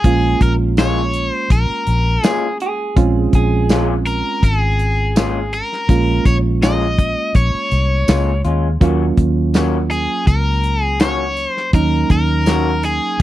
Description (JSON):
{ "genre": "straight-eighth soul blues", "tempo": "82 BPM", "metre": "4/4", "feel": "straight", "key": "Bb minor", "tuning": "A4 = 440 Hz", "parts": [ { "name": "cranked stack guitar", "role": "melody", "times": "0.0-13.2 s", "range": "Ab4 to Eb5", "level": "-20 LUFS", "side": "left 2 dB", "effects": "overdrive" }, { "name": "barky reed electric piano", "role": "accompaniment", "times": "0.0-13.2 s", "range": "Gb3 to F4", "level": "-22 LUFS", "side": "right 7 dB", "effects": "overdrive" }, { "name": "vintage muted fingered electric bass", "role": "bass", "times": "0.0-13.2 s", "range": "Ab1 to Eb2", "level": "-17 LUFS", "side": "equal", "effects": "none" }, { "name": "warm soul drum kit", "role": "drums", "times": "0.0-13.2 s", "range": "hi-hat, kick drum, snare drum, tambourine", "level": "-14 LUFS", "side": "equal", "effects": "none" }, { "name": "electric guitar through a small old amp", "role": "stabs", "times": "0.8-12.7 s", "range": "Bb2 to Gb4", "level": "-23 LUFS", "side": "left 5 dB", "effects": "none" }, { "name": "electric guitar through a small old amp", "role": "second line", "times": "2.6-3.9 s", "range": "Ab4", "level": "-23 LUFS", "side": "right 3 dB", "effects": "none" } ], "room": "small room ambience", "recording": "dry, close 1970s-style studio recording", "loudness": "-14 LUFS", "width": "side -14 dB against mid", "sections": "0.0-13.2 A section", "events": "none", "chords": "0.0 Bbm7; 8.8 Ebm7", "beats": "| 0.04 0.77 1.50 2.23 | 2.97 3.70 4.43 5.16 | 5.89 6.62 7.35 8.08 | 8.81 9.54 10.27 11.01 | 11.74 12.47 13.20" }